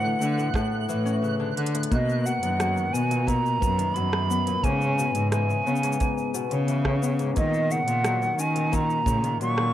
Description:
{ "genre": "folktronica", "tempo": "88 BPM", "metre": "4/4", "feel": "straight", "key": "B major", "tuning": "A4 = 443 Hz", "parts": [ { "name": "hollow concert flute", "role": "melody", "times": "0.0-9.7 s", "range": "D#5 to C#6", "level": "-27 LUFS", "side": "right 2 dB", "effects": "tape echo" }, { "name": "warm analog pad", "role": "sustained chords", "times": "0.0-1.9 s", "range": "A3 to F#4", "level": "-41 LUFS", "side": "left 1 dB", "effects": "none" }, { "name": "Celtic harp", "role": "arpeggios", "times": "0.0-9.7 s", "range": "G#2 to C#4", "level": "-28 LUFS", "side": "left 5 dB", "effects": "vintage 12-bit sampler grit, tape echo" }, { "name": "dark cello", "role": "bass", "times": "0.0-9.7 s", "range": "F#2 to D#3", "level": "-26 LUFS", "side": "right 1 dB", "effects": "tube saturation" }, { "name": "twinkling granular texture", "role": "texture", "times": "0.0-1.9 s", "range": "F#6", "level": "-38 LUFS", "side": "right 4 dB", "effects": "built-in reverb" }, { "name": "organic electronic drum kit", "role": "drums", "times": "0.2-9.7 s", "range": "hi-hat, rim click, shaker", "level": "-34 LUFS", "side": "right 1 dB", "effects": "overdrive" }, { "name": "kick drum", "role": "drums", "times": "0.5-9.2 s", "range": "none", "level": "-27 LUFS", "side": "right 1 dB", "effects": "none" } ], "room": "small room ambience", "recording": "dry, close 1970s-style studio recording", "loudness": "-22 LUFS", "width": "side -12 dB against mid", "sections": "0.0-1.9 A section; 1.9-9.7 B section", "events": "kick drops out 1.2-1.9; drum fill 1.6-1.9", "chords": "0.0 Dmaj9; 1.9 Bmaj7; 4.6 C#m7; 7.4 D#m7" }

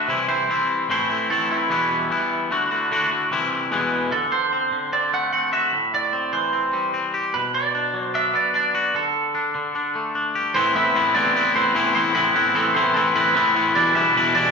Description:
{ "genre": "rock", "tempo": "149 BPM", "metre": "4/4", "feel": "straight", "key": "A dorian", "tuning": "A4 = 440 Hz", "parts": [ { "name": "twangy electric guitar", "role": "melody", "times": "0.0-14.5 s", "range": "E4 to F#5", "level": "-22 LUFS", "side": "right 4 dB", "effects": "none" }, { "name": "twangy electric guitar", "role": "riff", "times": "0.0-14.5 s", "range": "E2 to G4", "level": "-20 LUFS", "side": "left 2 dB", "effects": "none" } ], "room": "wet recital hall reverb, RT60 1.4 s", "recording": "recorded in a church or concert hall", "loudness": "-18 LUFS", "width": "side -4 dB against mid", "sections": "0.0-4.1 A section; 4.1-10.5 B section; 10.5-14.5 C section", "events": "none", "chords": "0.1 C; 0.9 Am; 1.7 Em; 2.5 D; 3.3 C; 3.7 E; 4.1 D7; 5.7 Am7; 7.3 Bm; 8.9 Dsus4; 10.5 Amadd9; 13.8 Em7" }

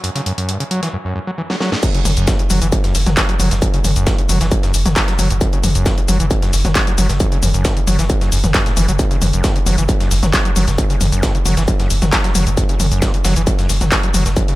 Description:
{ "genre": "driving peak-time techno", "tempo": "134 BPM", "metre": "4/4", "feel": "straight", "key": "unclear", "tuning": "A4 = 440 Hz", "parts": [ { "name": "overdriven acid bass", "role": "riff", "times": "0.0-14.5 s", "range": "F#2 to F#3", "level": "-22 LUFS", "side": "equal", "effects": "distortion, cassette tape, sidechain pumping, dub echo" }, { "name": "breakbeat sampler-style drum kit", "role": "drums", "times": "0.0-14.5 s", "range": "hi-hat, snare drum", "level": "-30 LUFS", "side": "equal", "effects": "none" }, { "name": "techno drum kit", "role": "drums", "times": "0.0-14.6 s", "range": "crash cymbal, handclaps, hi-hat, shaker, snare drum, toms", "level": "-19 LUFS", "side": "left 1 dB", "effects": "sidechain pumping on hats, sidechain pumping on cymbals, sidechain pumping on perc, sidechain pumping on toms" }, { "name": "electronic kick drum", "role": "drums", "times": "1.8-14.5 s", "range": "none", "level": "-17 LUFS", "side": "equal", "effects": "distortion" }, { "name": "warm sub bass", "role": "bass", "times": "2.1-14.4 s", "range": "F#1", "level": "-18 LUFS", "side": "equal", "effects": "sidechain pumping, low-pass filter" } ], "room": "light reverb, digital ambience", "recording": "echo-heavy mix", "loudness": "-13 LUFS", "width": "side -18 dB against mid", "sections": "0.0-1.8 A section; 1.8-14.6 B section", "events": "drum fill 1.5-1.8; drop 1.8-14.6", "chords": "0.0 F#5" }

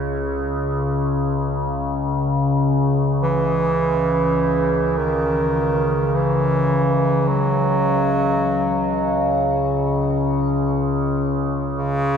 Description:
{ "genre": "dark ambient drone", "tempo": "free time", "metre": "none", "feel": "none", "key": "C# minor", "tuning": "A4 = 440 Hz", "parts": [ { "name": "overtone-sweeping drone", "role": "drone", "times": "0.0-12.2 s", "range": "C#2 to C#3", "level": "-19 LUFS", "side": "left 1 dB", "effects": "chorus, built-in reverb" }, { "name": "bronze singing bowl", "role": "texture", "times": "0.0-12.2 s", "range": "none", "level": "barely audible", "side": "none", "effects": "none" }, { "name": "bright bass clarinet", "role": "melody", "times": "3.2-12.2 s", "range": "C#3 to F#3", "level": "-22 LUFS", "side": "right 2 dB", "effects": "shimmer reverb, diffuse ambient delay" } ], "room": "wet cathedral reverb, RT60 5.8 s", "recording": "none", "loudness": "-17 LUFS", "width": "side -7 dB against mid", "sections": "0.0-12.2 A section", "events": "none", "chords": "none" }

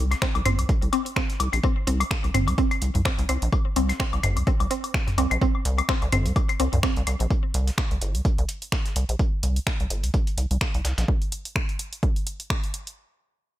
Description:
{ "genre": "minimal techno", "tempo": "127 BPM", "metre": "4/4", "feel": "swing 56% on 16ths", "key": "unclear", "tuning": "A4 = 440 Hz", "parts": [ { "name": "rubbery square bass", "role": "bass", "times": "0.0-11.0 s", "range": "G1 to C2", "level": "-24 LUFS", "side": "equal", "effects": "tube saturation, sidechain pumping" }, { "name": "dusty soul sampler-style drum kit", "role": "drums", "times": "0.1-11.1 s", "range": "hi-hat, snare drum", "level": "-39 LUFS", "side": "right 1 dB", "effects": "high-pass filter on hats, high-pass filter on snare" }, { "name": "punchy analog drum machine", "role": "drums", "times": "0.1-13.0 s", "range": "finger snaps, hi-hat", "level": "-31 LUFS", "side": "equal", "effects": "overdrive" }, { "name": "electronic claves, woodblock and toms", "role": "percussion", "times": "0.1-7.2 s", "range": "none", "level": "-28 LUFS", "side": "left 3 dB", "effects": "none" }, { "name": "mallet-like synth pluck", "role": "riff", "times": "0.2-6.9 s", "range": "C4", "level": "-29 LUFS", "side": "equal", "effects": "chorus, phaser, sidechain pumping, ping-pong delay" }, { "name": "electronic kick drum", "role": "drums", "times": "0.2-12.6 s", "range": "none", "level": "-25 LUFS", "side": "equal", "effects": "overdrive" } ], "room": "digital ambience", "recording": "none", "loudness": "-22 LUFS", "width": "side -14 dB against mid", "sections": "0.0-13.0 A section", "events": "drop 0.0-13.0", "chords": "none" }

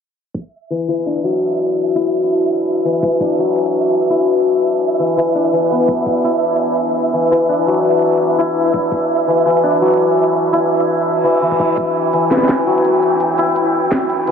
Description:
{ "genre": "half-time drum and bass", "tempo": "168 BPM", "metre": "4/4", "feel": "swing 55% on 16ths, half-time", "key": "E minor", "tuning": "A4 = 441 Hz", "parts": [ { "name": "electronic kick drum", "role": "drums", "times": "0.3-0.4, 3.0-3.3, 5.9-6.1, 8.7-9.0, 11.5-11.9 s", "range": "none", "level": "-25 LUFS", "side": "right 1 dB", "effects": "high-pass filter on kick, high-pass filter on room" }, { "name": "flickering grainy texture", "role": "texture", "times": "0.8-14.3 s", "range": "E5 to G5", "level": "-21 LUFS", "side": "right 4 dB", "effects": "built-in reverb" }, { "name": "santur", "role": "arpeggios", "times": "0.7-14.3 s", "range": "E3 to E4", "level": "-14 LUFS", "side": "left 2 dB", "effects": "vintage 12-bit sampler grit, low-pass filter, ping-pong delay" }, { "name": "reverse cymbal", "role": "sound effects", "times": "11.2-11.8 s", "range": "none", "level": "-38 LUFS", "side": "right 5 dB", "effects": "none" }, { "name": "drum and bass drum kit", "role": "drums", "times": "11.8-14.3 s", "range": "hi-hat, snare drum", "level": "-20 LUFS", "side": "right 1 dB", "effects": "none" } ], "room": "wet huge ambient reverb, RT60 9.2 s", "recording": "dreamy mix soaked in reverb, low-pass filter", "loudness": "-13 LUFS", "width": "side -6 dB against mid", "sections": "0.3-14.3 A section", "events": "filter sweep on santur 0.3-14.3; filter sweep 0.3-14.3; reverse cymbal 11.2-11.8", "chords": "0.3 Emadd9" }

